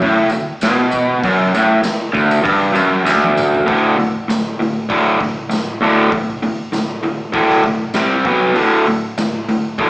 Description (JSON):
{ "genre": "garage rock duo or trio", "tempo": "98 BPM", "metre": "4/4", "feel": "straight", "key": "D major", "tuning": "A4 = 441 Hz", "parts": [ { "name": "raw garage guitar", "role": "riff", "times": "0.0-9.9 s", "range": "D2 to C4", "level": "-13 LUFS", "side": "equal", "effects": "overdrive, slapback echo" }, { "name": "raw garage drum kit", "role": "drums", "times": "0.0-9.9 s", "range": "hi-hat, kick drum, snare drum, toms", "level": "-24 LUFS", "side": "equal", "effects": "none" }, { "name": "tambourine", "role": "percussion", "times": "0.3-9.3 s", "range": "none", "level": "-33 LUFS", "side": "equal", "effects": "none" } ], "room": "moderate plate reverb, RT60 2.1 s", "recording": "live gig heard through the venue's PA, club reverb, small speaker sound", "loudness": "-13 LUFS", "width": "side -23 dB against mid", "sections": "0.0-3.7 A section; 3.7-9.9 B section", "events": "drum fill 3.1-3.7", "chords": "0.0 D; 3.7 D5; 7.9 C5; 8.2 B5; 8.6 D5" }